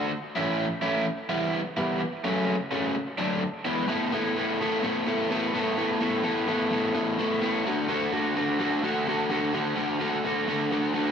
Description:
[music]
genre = rock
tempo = 128 BPM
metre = 4/4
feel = straight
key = A major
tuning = A4 = 441 Hz
[part]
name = overdriven electric guitar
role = solo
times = 0.0-11.1 s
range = C#3 to A4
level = -24 LUFS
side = equal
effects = spring reverb, analog delay
[sound]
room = light reverb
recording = worn, warbling old tape, cassette tape, warbly pitch drift, small room ambience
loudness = -24 LUFS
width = side -7 dB against mid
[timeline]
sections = 0.0-3.9 A section; 3.9-11.1 B section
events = none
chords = 0.1 A; 1.1 Em; 2.0 F#m; 3.0 D; 3.4 E; 3.9 Asus2; 7.7 D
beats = | 0.11 0.58 1.06 1.53 | 2.00 2.48 2.95 3.42 | 3.89 4.37 4.84 5.30 | 5.78 6.24 6.71 7.18 | 7.65 8.12 8.59 9.06 | 9.53 10.00 10.47 10.94

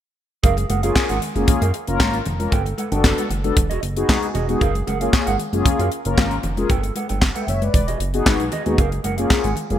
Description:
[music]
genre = early-eighties boogie funk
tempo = 115 BPM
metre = 4/4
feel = straight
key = F# major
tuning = A4 = 440 Hz
[part]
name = mellow electric guitar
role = riff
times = 0.4-9.7 s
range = F#4 to G5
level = -28 LUFS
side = right 8 dB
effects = lush chorus
[part]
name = chorused synth bass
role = bass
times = 0.4-9.8 s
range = E1 to F#2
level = -23 LUFS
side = equal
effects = none
[part]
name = tight funk drum kit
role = drums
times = 0.4-9.8 s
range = handclaps, hi-hat, kick drum, snare drum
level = -20 LUFS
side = equal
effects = none
[part]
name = congas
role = percussion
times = 0.4-9.8 s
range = none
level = -30 LUFS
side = left 2 dB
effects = none
[part]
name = mellow synth brass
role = accompaniment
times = 0.8-9.8 s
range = A#3 to G5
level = -23 LUFS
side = left 3 dB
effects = chorus
[sound]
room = light reverb, studio ambience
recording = bright 1980s-style digital production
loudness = -17 LUFS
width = side -11 dB against mid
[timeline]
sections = 0.4-9.8 A section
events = none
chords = 0.4 F#maj9; 2.5 Gmaj9; 3.6 Emaj9; 4.6 F#maj9; 6.7 Gmaj9; 7.7 Emaj9; 8.8 F#maj9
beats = | 0.44 0.96 1.48 2.00 | 2.52 3.04 3.57 4.09 | 4.61 5.13 5.65 6.17 | 6.70 7.22 7.74 8.26 | 8.78 9.31

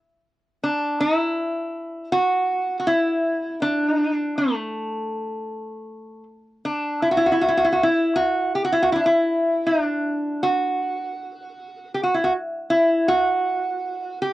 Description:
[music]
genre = turkish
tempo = 79 BPM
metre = 4/4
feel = straight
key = unclear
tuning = A4 = 441 Hz
[part]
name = metal-body resonator slide guitar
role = solo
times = 0.6-14.3 s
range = A3 to G4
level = -20 LUFS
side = equal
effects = cassette tape
[sound]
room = little or no reverb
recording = home recording on cassette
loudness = -19 LUFS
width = side -16 dB against mid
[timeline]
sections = 0.6-14.3 A section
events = none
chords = none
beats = | 0.61 1.36 2.12 2.87 | 3.63 4.38 5.14 5.89 | 6.65 7.40 8.16 8.91 | 9.67 10.43 11.18 11.94 | 12.70 13.46 14.21

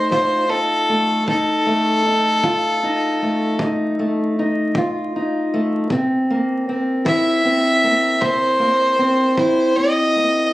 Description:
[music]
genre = acoustic country blues, solo or duo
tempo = 52 BPM (dotted quarters)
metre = 12/8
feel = straight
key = unclear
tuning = A4 = 440 Hz
[part]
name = clear fiddle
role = melody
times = 0.0-10.5 s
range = A4 to E5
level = -17 LUFS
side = equal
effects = none
[part]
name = fingerpicked steel-string acoustic guitar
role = accompaniment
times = 0.0-10.5 s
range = F2 to F4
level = -19 LUFS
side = equal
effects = none
[part]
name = kick drum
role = drums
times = 0.1-9.6 s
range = none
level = -26 LUFS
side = equal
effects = none
[sound]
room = light reverb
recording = recorded on a phone in the room, studio ambience, vinyl crackle, compression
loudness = -16 LUFS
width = side -17 dB against mid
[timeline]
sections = 0.0-10.5 A section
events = none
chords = 0.0 F7; 5.9 C7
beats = 0.12 | 1.28 2.44 3.59 4.75 | 5.90 7.06 8.21 9.37 | 10.53

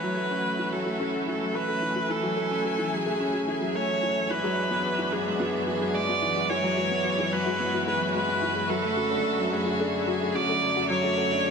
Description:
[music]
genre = piano and strings electronica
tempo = 109 BPM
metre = 4/4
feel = straight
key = F# minor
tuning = A4 = 440 Hz
[part]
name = rich viola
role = melody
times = 0.0-11.5 s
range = G#4 to D5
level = -27 LUFS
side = right 1 dB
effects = none
[part]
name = rich studio string section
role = sustained chords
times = 0.0-11.5 s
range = F#2 to G#5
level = -32 LUFS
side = right 1 dB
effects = none
[part]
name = warm concert grand piano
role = riff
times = 0.0-11.5 s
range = E3 to D4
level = -29 LUFS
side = left 1 dB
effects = none
[part]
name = soft round pluck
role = arpeggios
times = 0.2-11.5 s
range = F#4 to A4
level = -37 LUFS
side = left 3 dB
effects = none
[sound]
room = wet huge ambient reverb, RT60 8.2 s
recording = none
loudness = -24 LUFS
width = side -6 dB against mid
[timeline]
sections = 0.0-11.5 A section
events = build-up 0.0-11.5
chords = 0.0 F#m7; 4.3 E9/F#; 8.7 Dmaj7/F#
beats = 0.45 1.00 1.55 | 2.10 2.65 3.20 3.75 | 4.30 4.85 5.40 5.95 | 6.50 7.05 7.60 8.15 | 8.70 9.25 9.80 10.36 | 10.90 11.46

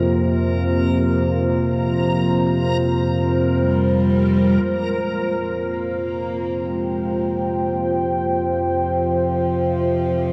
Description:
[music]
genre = dark ambient drone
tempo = 59 BPM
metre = 4/4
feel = straight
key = unclear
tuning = A4 = 439 Hz
[part]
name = dark analog pad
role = sustained chords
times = 0.0-10.3 s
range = F3 to G5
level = -23 LUFS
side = equal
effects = chorus
[part]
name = analog drone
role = drone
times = 0.0-10.3 s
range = F2 to C3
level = -24 LUFS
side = equal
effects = chorus
[part]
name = backwards swelling texture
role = texture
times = 0.0-4.7 s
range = Bb4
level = -32 LUFS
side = equal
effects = built-in reverb
[part]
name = dark cello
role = melody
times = 3.6-10.3 s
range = F3 to Bb3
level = -26 LUFS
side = equal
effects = analog delay
[sound]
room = wet echo chamber reverb, RT60 2.4 s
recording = echo-heavy mix, cassette tape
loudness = -20 LUFS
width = mono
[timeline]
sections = 0.0-4.6 A section; 4.6-10.3 B section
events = fade-in on synth drone 4.6-10.3; fade-in on cello 4.6-10.3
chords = 0.0 Bbsus2/F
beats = | 0.54 1.55 2.57 3.61 | 4.64 5.66 6.67 7.68 | 8.69 9.70

